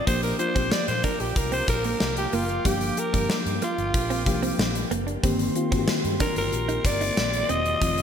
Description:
1980s-style pop; 93 BPM; 4/4; straight; A4 = 439 Hz
raspy alto saxophone; melody; 0.0-8.0 s; F4 to Eb5; -27 LUFS; equal; ping-pong delay
mellow FM electric piano; accompaniment; 0.0-8.0 s; Eb3 to G4; -29 LUFS; left 3 dB; chorus
mellow woodwind section; sustained chords; 0.0-8.0 s; Eb4 to D6; -36 LUFS; right 3 dB
direct-recorded clean electric guitar; riff; 0.1-7.9 s; F3 to Eb4; -33 LUFS; right 6 dB; lush chorus, ping-pong delay
vintage muted fingered electric bass; bass; 0.1-8.0 s; E1 to Bb2; -30 LUFS; equal
gated 80s drum kit; drums; 0.1-8.0 s; hi-hat, kick drum, snare drum, tambourine; -27 LUFS; equal; gated reverb
moderate lush hall reverb, RT60 2.0 s, studio ambience; bright 1980s-style digital production; -22 LUFS; side -8 dB against mid
0.0-8.0 A section
alto saxophone solo 0.0-8.0
0.1 Bb6; 5.2 Cm7/G

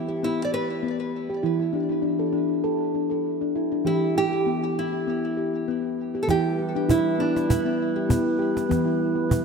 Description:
world meditative, meditative tuned percussion; 99 BPM; 4/4; swing 55% on 16ths; E minor pentatonic; A4 = 439 Hz
nylon-string guitar; melody; 0.0-8.4 s; D4 to D5; -28 LUFS; right 1 dB; ping-pong delay
steel tongue drum; arpeggios; 0.0-9.4 s; E3 to A4; -24 LUFS; left 1 dB; ping-pong delay
glass harmonica; sustained chords; 6.5-9.4 s; G3 to B4; -28 LUFS; right 2 dB
cajon; percussion; 6.3-9.4 s; -24 LUFS; right 1 dB
moderate plate reverb, RT60 3.0 s; dreamy mix soaked in reverb; -22 LUFS; side -5 dB against mid
0.0-6.3 A section; 6.3-9.4 B section
0.0 Em; 1.4 D5/E; 3.9 Em

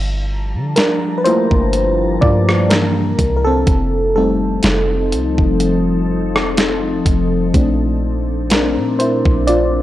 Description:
contemporary R&B; 62 BPM; 4/4; swing 54% on 16ths; A4 = 441 Hz
glassy FM pad; sustained chords; 0.4-9.8 s; Bb2 to Bb5; -21 LUFS; left 2 dB; ensemble chorus, built-in reverb
warm 808-style bass; bass; 0.0-9.8 s; F1 to D3; -19 LUFS; equal
mellow FM electric piano; accompaniment; 0.8-9.8 s; E3 to D5; -17 LUFS; equal; chorus
clean 12-bit digital drum machine; drums; 0.8-9.7 s; hi-hat, kick drum, rim click, snare drum; -17 LUFS; equal; overdrive
little or no reverb; dry, gritty hardware recording, transformer saturation; -13 LUFS; side -14 dB against mid
0.0-9.8 A section
FM electric piano solo 0.0-9.8
0.0 Gm9; 2.7 C9; 3.7 F7; 7.5 Bbmaj9

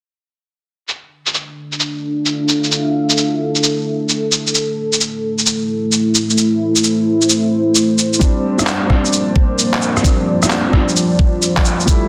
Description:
future garage; 131 BPM; 4/4; swing 66% on 16ths; D minor; A4 = 440 Hz
dark analog pad; sustained chords; 1.6-12.1 s; F3 to F5; -19 LUFS; equal; chorus, vintage 12-bit sampler grit, sidechain pumping
electronic shaker, rim click and handclaps; drums; 0.9-12.0 s; -19 LUFS; equal; low-pass filter on perc, low-pass filter on snare, low-pass filter on room
dark upright piano; accompaniment; 8.2-12.1 s; G3 to E4; -22 LUFS; equal; sidechain pumping, dub echo
electronic kick drum; drums; 8.2-12.0 s; -16 LUFS; equal
moderate lush hall reverb, RT60 2.2 s; dense, heavily limited modern master; -16 LUFS; mono
0.9-12.1 A section
filter sweep on drum 0.9-12.1
0.9 Dm; 4.6 Am; 8.2 Bb69

